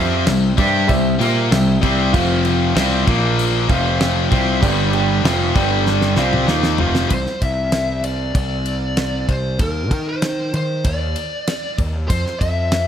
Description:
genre	classic rock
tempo	96 BPM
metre	4/4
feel	straight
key	unclear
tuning	A4 = 440 Hz
part	warm upright piano	accompaniment	0.0-7.0 s	F4 to G5	-24 LUFS	right 3 dB	none
part	distorted electric guitar	riff	0.0-7.1 s	F2 to Bb4	-21 LUFS	right 6 dB	distortion
part	overdriven electric guitar	riff	0.0-7.1 s	F2 to Bb4	-20 LUFS	left 9 dB	none
part	fuzz picked electric bass	bass	0.0-12.9 s	F1 to Eb3	-20 LUFS	equal	overdrive
part	damped 70s drum kit	drums	0.3-12.9 s	crash cymbal, kick drum, ride cymbal, snare drum, toms	-21 LUFS	equal	none
part	fuzz lead guitar	melody	7.1-12.9 s	Bb4 to E5	-24 LUFS	left 1 dB	distortion
room	light reverb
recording	none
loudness	-15 LUFS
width	side -9 dB against mid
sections	0.0-7.1 A section; 7.1-12.9 B section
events	drum fill 5.9-7.1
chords	0.0 C; 2.1 F5; 3.1 Bb5; 3.7 F5; 4.6 G5; 5.2 F5; 5.6 G5; 6.2 F5; 7.1 C; 9.6 Cmadd9/Eb; 12.1 Dm9/F (rootless)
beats	0.27 0.89 1.51 | 2.14 2.76 3.38 4.00 | 4.62 5.25 5.87 6.49 | 7.11 7.73 8.36 8.98 | 9.60 10.22 10.85 11.47 | 12.09 12.72

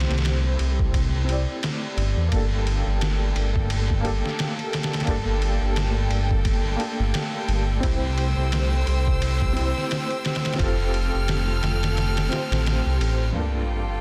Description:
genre	trip hop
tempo	87 BPM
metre	4/4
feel	swing 58% on 16ths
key	G dorian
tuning	A4 = 440 Hz
part	felt-muted upright piano	accompaniment	0.0-14.0 s	G2 to D5	-32 LUFS	equal	tremolo, vintage 12-bit sampler grit, tape echo
part	dark detuned saw bass	bass	0.0-13.3 s	F1 to E2	-25 LUFS	equal	none
part	trip hop sampler-style drum kit	drums	0.0-13.2 s	kick drum, ride cymbal, snare drum	-29 LUFS	equal	overdrive, studio ambience
part	wind-like tuned noise texture	texture	0.0-14.0 s	A3 to A5	-42 LUFS	equal	none
part	rich studio violin section	sustained chords	2.3-14.0 s	G3 to F6	-34 LUFS	equal	none
part	sub drop	sound effects	13.4-14.0 s	none	-29 LUFS	equal	none
room	little or no reverb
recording	dense, heavily limited modern master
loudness	-23 LUFS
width	mono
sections	0.0-13.4 A section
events	impact 13.4-14.0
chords	0.0 C; 2.3 Gmadd9; 7.8 C; 10.6 Fadd9; 13.4 Gm9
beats	0.25 0.94 1.63 | 2.32 3.01 3.70 4.39 | 5.08 5.77 6.46 7.15 | 7.84 8.53 9.22 9.91 | 10.60 11.29 11.97 12.66 | 13.35

